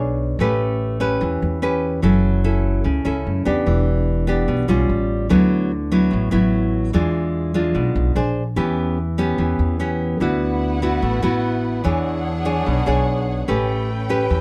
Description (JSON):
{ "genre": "bossa nova", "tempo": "147 BPM", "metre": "4/4", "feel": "straight", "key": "unclear", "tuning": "A4 = 440 Hz", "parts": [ { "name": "nylon-string guitar", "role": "accompaniment", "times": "0.0-14.4 s", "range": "A2 to C#5", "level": "-22 LUFS", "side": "equal", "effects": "none" }, { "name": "upright bass", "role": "bass", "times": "0.0-14.4 s", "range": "E1 to F#2", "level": "-24 LUFS", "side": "equal", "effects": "none" }, { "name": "warm studio violin section", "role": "sustained chords", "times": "10.2-14.4 s", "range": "C#4 to G5", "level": "-31 LUFS", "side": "equal", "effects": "none" } ], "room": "light reverb", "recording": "dark, warm production", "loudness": "-20 LUFS", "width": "mono", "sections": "0.0-14.4 A section", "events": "none", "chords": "0.4 A9; 2.0 F#m7; 3.7 Em7; 4.9 Aaug7; 5.3 D69; 6.9 E7b9; 8.2 Bb9; 8.6 Em6; 10.2 D69; 11.8 E13; 13.5 A9" }